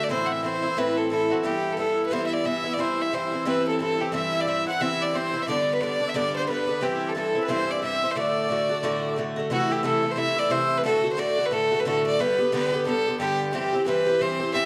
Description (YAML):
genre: celtic folk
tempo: 179 BPM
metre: 4/4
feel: swing 60% on 8ths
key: unclear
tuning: A4 = 441 Hz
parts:
  - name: clear fiddle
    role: melody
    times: 0.0-14.7 s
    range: F#4 to F#5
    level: -27 LUFS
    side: equal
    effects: none
  - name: Irish bouzouki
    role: accompaniment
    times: 0.0-14.7 s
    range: G2 to G4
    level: -29 LUFS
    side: equal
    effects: none
  - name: mellow accordion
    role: second line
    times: 4.1-9.1 s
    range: G4 to F#5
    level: -34 LUFS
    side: equal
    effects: none
room: wet recital hall reverb, RT60 1.4 s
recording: dark, warm production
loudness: -25 LUFS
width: mono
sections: 0.0-9.5 A section; 9.5-14.7 B section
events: none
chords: 0.1 Am; 1.4 Em; 2.8 C; 5.5 G; 6.8 C; 8.2 D; 9.5 Am; 10.8 D/A; 12.2 G; 13.5 C